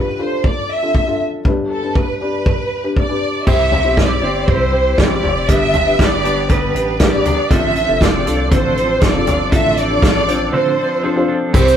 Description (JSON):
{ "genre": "piano-driven pop", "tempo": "119 BPM", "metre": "4/4", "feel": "straight", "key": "unclear", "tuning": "A4 = 440 Hz", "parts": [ { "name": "rich studio violin section", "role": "melody", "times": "0.0-11.8 s", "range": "A4 to E5", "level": "-18 LUFS", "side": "right 1 dB", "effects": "none" }, { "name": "felt-muted upright piano", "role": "accompaniment", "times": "0.0-11.8 s", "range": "G1 to D5", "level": "-22 LUFS", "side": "left 3 dB", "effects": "none" }, { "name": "natural country drum kit", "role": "drums", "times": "0.4-11.7 s", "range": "crash cymbal, hi-hat, kick drum, snare drum, toms", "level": "-16 LUFS", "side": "equal", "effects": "none" }, { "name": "twelve-string electric guitar", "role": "riff", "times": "3.5-11.8 s", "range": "G2 to A4", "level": "-21 LUFS", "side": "right 1 dB", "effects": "tremolo" }, { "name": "chorused synth bass", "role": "bass", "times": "3.5-11.8 s", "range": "F1 to C2", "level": "-22 LUFS", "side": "equal", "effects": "none" }, { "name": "tube shaker", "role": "percussion", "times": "11.5-11.8 s", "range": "none", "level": "-34 LUFS", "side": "left 4 dB", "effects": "none" } ], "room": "moderate studio reverb, RT60 0.6 s", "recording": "rough rehearsal-room recording", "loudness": "-13 LUFS", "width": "side -9 dB against mid", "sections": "0.0-3.5 A section; 3.5-11.5 B section", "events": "break 10.5-11.5", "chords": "0.0 F6/A; 1.5 G; 3.5 C; 5.5 G; 7.5 F6", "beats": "0.45 0.95 | 1.45 1.96 2.46 2.97 | 3.47 3.98 4.48 4.99 | 5.49 5.99 6.50 7.00 | 7.51 8.01 8.52 9.02 | 9.52 10.03 10.53 11.04 | 11.54" }